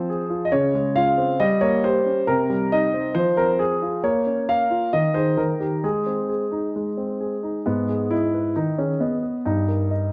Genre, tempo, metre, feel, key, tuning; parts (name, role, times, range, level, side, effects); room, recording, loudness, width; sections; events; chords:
classical-period piano sonatina; 135 BPM; 4/4; straight; Ab major; A4 = 440 Hz
warm grand piano; solo; 0.0-10.1 s; G2 to F5; -22 LUFS; equal
moderate recital hall reverb, RT60 1.6 s; dark, warm production; -22 LUFS; mono
0.0-7.7 A section; 7.7-10.1 B section
0.0 Fm; 0.5 Dbmaj7; 1.4 Gdim; 2.3 Cm7; 3.2 Fm; 4.0 Bbm; 4.9 Ab/Eb; 5.4 Eb; 5.8 Ab; 7.7 G#m; 9.5 D#/G